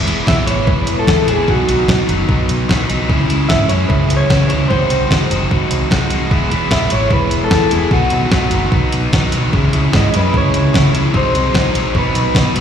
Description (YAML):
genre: indie rock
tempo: 149 BPM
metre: 4/4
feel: straight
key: E major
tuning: A4 = 440 Hz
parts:
  - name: biting overdriven guitar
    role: riff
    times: 0.0-12.6 s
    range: B2 to F#4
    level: -17 LUFS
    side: equal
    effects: slapback echo
  - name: hollow-body short-scale fingered electric bass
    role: bass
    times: 0.1-12.6 s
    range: E1 to C#3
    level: -17 LUFS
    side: equal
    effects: none
  - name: clean 12-bit digital drum machine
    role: drums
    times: 0.1-12.6 s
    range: hi-hat, kick drum, snare drum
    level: -17 LUFS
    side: equal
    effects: none
  - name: electric guitar through a small old amp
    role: melody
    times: 0.3-12.5 s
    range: F#4 to E5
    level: -19 LUFS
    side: equal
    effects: lush chorus, slapback echo, tape echo
room: little or no reverb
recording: live gig heard through the venue's PA, recital hall reverb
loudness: -12 LUFS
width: side -8 dB against mid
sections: 0.0-12.6 A section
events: none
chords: 0.0 E; 1.5 B; 3.1 C#m; 4.7 G#7; 6.3 E; 7.9 B; 9.5 C#m; 11.1 G#7/B#; 11.9 B